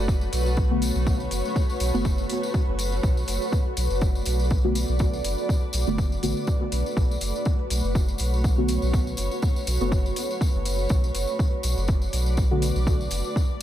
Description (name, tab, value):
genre	dub techno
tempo	122 BPM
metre	4/4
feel	swing 55% on 16ths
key	B minor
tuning	A4 = 438 Hz
part	granular cloud pad	sustained chords	0.0-13.6 s	A3 to D5	-30 LUFS	equal	built-in reverb, sidechain pumping
part	warm sub bass	bass	0.0-13.2 s	F#1 to B1	-26 LUFS	equal	sidechain pumping
part	electronic kick drum	drums	0.1-13.5 s	none	-23 LUFS	equal	overdrive
part	tambourine	percussion	0.1-13.5 s	none	-36 LUFS	left 2 dB	none
part	electronic hi-hat	drums	0.3-13.2 s	none	-36 LUFS	equal	overdrive
part	deep mellow chord stab	stabs	0.7-12.6 s	D3 to F#4	-29 LUFS	left 1 dB	chorus, phaser, sidechain pumping, dub echo
room	light reverb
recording	none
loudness	-22 LUFS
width	side -12 dB against mid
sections	0.0-13.6 A section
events	none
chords	0.0 Bm7